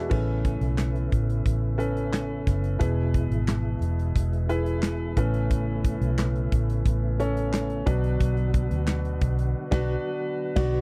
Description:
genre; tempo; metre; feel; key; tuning
piano-driven pop; 89 BPM; 4/4; straight; A major; A4 = 445 Hz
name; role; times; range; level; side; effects
felt-muted upright piano; accompaniment; 0.0-10.8 s; A2 to E5; -32 LUFS; equal; none
tonewheel organ; sustained chords; 0.0-10.8 s; B2 to F#4; -37 LUFS; equal; overdrive, chorus vibrato, fast rotary speaker
vintage muted fingered electric bass; bass; 0.0-10.8 s; E1 to D2; -28 LUFS; equal; none
modern studio drum kit; drums; 0.1-10.8 s; crash cymbal, handclaps, hi-hat, kick drum, snare drum; -27 LUFS; equal; none
room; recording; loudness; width
little or no reverb; dry, close 1970s-style studio recording; -26 LUFS; mono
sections
0.1-10.8 A section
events
band accent 9.6-10.8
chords
0.1 Aadd9; 2.8 E; 5.2 Aadd9; 7.9 Bm

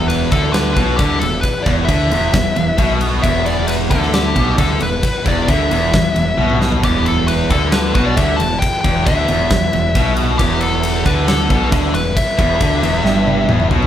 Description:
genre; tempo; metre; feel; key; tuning
hard rock; 134 BPM; 4/4; straight; E minor; A4 = 439 Hz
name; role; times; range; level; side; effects
nasal lead guitar with a parked wah; melody; 0.0-13.7 s; G4 to A5; -20 LUFS; left 2 dB; overdrive
bright tonewheel organ; sustained chords; 0.0-13.9 s; E3 to F#5; -29 LUFS; equal; none
distorted electric guitar; riff; 0.0-13.9 s; E2 to D3; -20 LUFS; right 5 dB; distortion
high-gain distorted guitar; riff; 0.0-13.9 s; E2 to D3; -22 LUFS; left 6 dB; distortion
growling picked electric bass; bass; 0.0-13.9 s; E1 to D2; -20 LUFS; equal; overdrive
huge arena drum kit; drums; 0.1-13.9 s; kick drum, ride cymbal, snare drum, toms; -18 LUFS; equal; none
room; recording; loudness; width
moderate large studio reverb, RT60 1.2 s; band playing live in one room; -13 LUFS; side -10 dB against mid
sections
0.0-13.9 A section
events
drum fill 6.4-6.8, 13.0-13.9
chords
0.0 E5

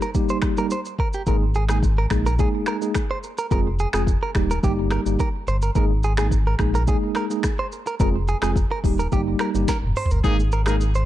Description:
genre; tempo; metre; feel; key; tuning
afrobeats; 107 BPM; 4/4; straight; Ab major; A4 = 440 Hz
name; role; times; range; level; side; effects
mellow tine electric piano; accompaniment; 0.0-10.8 s; G3 to Ab4; -26 LUFS; left 1 dB; medium stereo tremolo
direct-recorded clean electric guitar; riff; 0.0-11.0 s; G4 to C5; -28 LUFS; right 4 dB; tape echo
afro-pop drum kit; drums; 0.0-11.1 s; finger snaps, hi-hat, kick drum, rim click, shaker, snare drum, toms; -24 LUFS; equal; none
sub bass with octave; bass; 1.3-11.0 s; Eb1 to Bb1; -22 LUFS; equal; none
clear horn section; second line; 10.2-10.8 s; Bb3 to Ab4; -30 LUFS; left 3 dB; tape echo
room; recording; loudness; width
light reverb, digital ambience; dark, warm production; -19 LUFS; side -13 dB against mid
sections
0.0-1.3 A section; 1.3-10.2 B section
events
drum fill 9.7-10.2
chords
0.0 Eb; 1.3 Absus2; 3.5 Fm; 4.4 Eb; 5.8 Absus2; 8.0 Fm; 8.8 Eb; 10.2 Absus2

